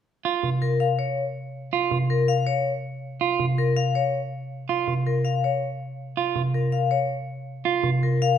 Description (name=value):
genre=classical, minimalist pattern music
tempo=162 BPM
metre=4/4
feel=straight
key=unclear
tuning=A4 = 440 Hz
part: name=clean electric guitar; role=arpeggios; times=0.2-7.9 s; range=F4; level=-26 LUFS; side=right 7 dB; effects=none
part: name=folk marimba with soft mallets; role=accompaniment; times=0.4-8.1 s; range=C3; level=-26 LUFS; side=right 1 dB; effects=none
part: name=vibraphone with medium hard mallets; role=melody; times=0.6-8.4 s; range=Bb4 to F5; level=-25 LUFS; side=left 6 dB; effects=none
room=wet recital hall reverb, RT60 1.7 s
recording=none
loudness=-22 LUFS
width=side -9 dB against mid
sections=0.2-8.4 A section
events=none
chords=0.2 Csus4